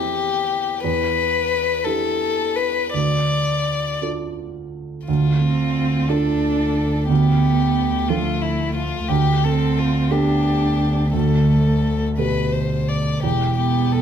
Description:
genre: neoclassical piano and strings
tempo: 55-61 BPM (dotted quarters)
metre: 6/8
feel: rubato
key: D dorian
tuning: A4 = 440 Hz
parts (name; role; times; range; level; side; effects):
- warm violin; melody; 0.0-14.0 s; E4 to D5; -23 LUFS; left 7 dB; none
- felt-muted upright piano; accompaniment; 0.0-14.0 s; D2 to A4; -22 LUFS; right 3 dB; none
- warm double bass; bass; 5.1-14.0 s; E1 to D2; -22 LUFS; equal; none
- dark cello; second line; 5.4-14.0 s; A3 to D4; -23 LUFS; right 4 dB; none
room: wet large studio reverb, RT60 1.2 s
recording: band playing live in one room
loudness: -17 LUFS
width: side -8 dB against mid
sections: 0.0-5.1 A section; 5.1-14.0 A section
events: none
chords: 0.0 C/E; 0.8 Em7; 2.9 Dm; 9.1 Gadd9/D; 13.2 C/E (rootless)

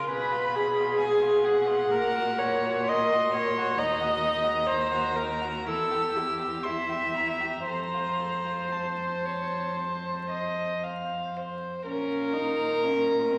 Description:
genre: classical, slow romantic movement for string quartet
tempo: 56-70 BPM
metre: 4/4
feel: rubato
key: unclear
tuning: A4 = 441 Hz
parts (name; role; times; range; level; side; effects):
- warm violin; melody; 0.0-13.4 s; Eb5 to E6; -35 LUFS; equal; none
- warm violin; second line; 0.0-13.4 s; Eb4 to F5; -34 LUFS; equal; none
- dark viola; accompaniment; 0.0-13.4 s; C4 to E5; -30 LUFS; equal; none
- dark cello; bass; 0.0-13.4 s; Eb2 to Cb3; -38 LUFS; equal; none
room: wet recital hall reverb, RT60 1.5 s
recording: vinyl crackle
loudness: -27 LUFS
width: mono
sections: 0.0-11.9 A section; 11.9-13.4 B section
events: none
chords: 0.1 Fdim/Cb; 1.9 Gb/Bb; 3.8 Ebm; 5.7 Edim; 7.7 F; 11.9 Bbm

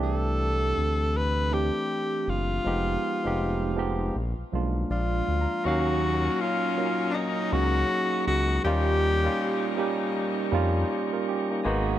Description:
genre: R&B, neo-soul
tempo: 80 BPM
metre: 4/4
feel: swing 60% on 16ths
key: unclear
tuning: A4 = 440 Hz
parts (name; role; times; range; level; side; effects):
- breathy tenor saxophone; melody; 0.0-10.1 s; D4 to Cb5; -28 LUFS; left 2 dB; tape echo
- barky tine electric piano; accompaniment; 0.0-12.0 s; E3 to Bb5; -28 LUFS; right 3 dB; auto-pan
- smooth synth bass; bass; 0.0-12.0 s; F1 to F2; -27 LUFS; left 1 dB; none
- tonewheel organ; sustained chords; 5.6-12.0 s; Bb4 to Db6; -37 LUFS; left 2 dB; fast rotary speaker
- clear saxophone section; stabs; 5.6-12.0 s; Bb2 to Ab4; -36 LUFS; left 8 dB; none
room: light reverb, small room ambience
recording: none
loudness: -24 LUFS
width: side -12 dB against mid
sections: 0.0-5.6 A section; 5.6-12.0 B section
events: tine electric piano fill 4.5-5.6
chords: 0.0 C69; 2.6 Fm7b5; 4.1 Bb7; 5.6 Ebm7; 8.6 Eb7

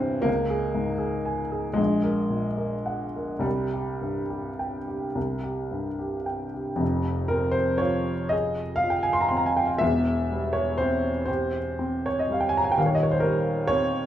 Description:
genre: classical, romantic nocturne for solo piano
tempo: 34-43 BPM (dotted quarters)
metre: 6/8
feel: rubato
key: F minor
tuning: A4 = 441 Hz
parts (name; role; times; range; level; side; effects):
- warm upright piano; solo; 0.0-14.1 s; Eb1 to C6; -23 LUFS; equal; none
room: wet large studio reverb, RT60 0.8 s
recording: heard from further back in the room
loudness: -23 LUFS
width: side -11 dB against mid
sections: 0.0-6.8 A section; 6.8-14.1 B section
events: none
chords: 0.3 Db5; 1.8 Gb/Bb; 3.5 C5; 6.8 Fm; 9.8 C/E; 12.8 Cm/Eb

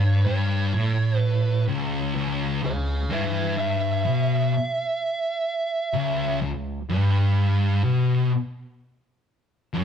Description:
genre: metal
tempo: 64 BPM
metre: 4/4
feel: straight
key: C# minor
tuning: A4 = 445 Hz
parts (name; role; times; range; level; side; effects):
- fuzz lead guitar; melody; 0.0-6.4 s; G#4 to E5; -27 LUFS; right 3 dB; distortion
- thick fuzz guitar; riff; 0.0-9.8 s; C#2 to B2; -21 LUFS; left 1 dB; distortion
room: moderate stone room reverb, RT60 1.1 s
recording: rough rehearsal-room recording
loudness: -21 LUFS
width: side -8 dB against mid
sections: 0.0-2.2 A section; 2.2-9.8 B section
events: lead electric guitar solo 2.2-9.8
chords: 0.0 N.C.; 2.2 C#m

